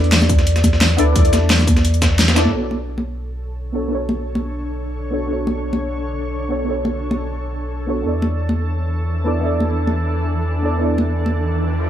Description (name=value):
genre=liquid drum and bass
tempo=174 BPM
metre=4/4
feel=swing 53% on 16ths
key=B minor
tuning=A4 = 440 Hz
part: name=vibraphone with hard mallets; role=melody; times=0.0-2.1 s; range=D5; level=-28 LUFS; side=equal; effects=digital delay
part: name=deep mellow chord stab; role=accompaniment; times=0.0-11.9 s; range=B3 to D5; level=-23 LUFS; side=equal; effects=chorus, digital delay
part: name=warm sub bass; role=bass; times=0.0-11.9 s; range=B1 to A2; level=-20 LUFS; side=equal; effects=tube saturation
part: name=breakbeat sampler-style drum kit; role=drums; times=0.0-2.5 s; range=hi-hat, snare drum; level=-22 LUFS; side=equal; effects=high-pass filter on snare, high-pass filter on hats
part: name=pop drum kit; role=drums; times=0.1-2.4 s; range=hi-hat, shaker, snare drum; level=-19 LUFS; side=equal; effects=none
part: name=congas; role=percussion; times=0.2-11.3 s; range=none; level=-22 LUFS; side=equal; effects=none
part: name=electronic kick drum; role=drums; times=0.3-2.1 s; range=none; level=-17 LUFS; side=equal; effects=none
part: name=shimmering ambient pad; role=sustained chords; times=3.3-11.9 s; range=D3 to C#5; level=-26 LUFS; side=equal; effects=chorus, built-in reverb, sidechain pumping
part: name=riser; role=sound effects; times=11.2-11.9 s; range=none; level=-31 LUFS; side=right 1 dB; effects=none
room=light reverb, digital ambience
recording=none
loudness=-16 LUFS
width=side -10 dB against mid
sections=0.0-2.5 A section; 2.5-11.9 B section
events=drop 0.0-2.5; kick drops out 2.2-2.5; band accent 2.2; filter sweep on ambient pad 2.5-11.9; riser 11.2-11.9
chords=0.0 E7sus4; 2.5 Bm9; 8.1 E7sus4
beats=0.12 0.47 0.81 | 1.16 1.50 1.85 2.19 | 2.54 2.88 3.23 3.57 | 3.92 4.26 4.61 4.95 | 5.29 5.64 5.98 6.33 | 6.67 7.02 7.36 7.71 | 8.05 8.40 8.74 9.09 | 9.43 9.78 10.12 10.47 | 10.81 11.16 11.50 11.85